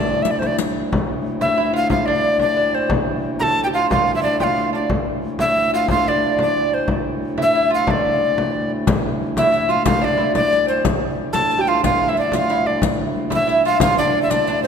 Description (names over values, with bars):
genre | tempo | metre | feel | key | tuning
medieval dance | 121 BPM (dotted quarters) | 6/8 | straight | D minor | A4 = 442 Hz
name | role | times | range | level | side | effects
breathy bright tenor recorder | melody | 0.0-14.7 s | C5 to Bb5 | -19 LUFS | left 1 dB | none
lute | second line | 0.0-14.7 s | C4 to A4 | -22 LUFS | right 3 dB | none
hand-pumped harmonium | drone | 0.0-14.7 s | D2 to A2 | -25 LUFS | equal | none
frame drum | percussion | 0.1-14.5 s | none | -23 LUFS | left 2 dB | none
riq | percussion | 0.2-0.7, 8.9-14.7 s | none | -28 LUFS | left 5 dB | none
room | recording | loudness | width
wet concert hall reverb, RT60 2.1 s | none | -16 LUFS | side -7 dB against mid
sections
0.9-8.9 A section; 8.9-14.7 A section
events
none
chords
none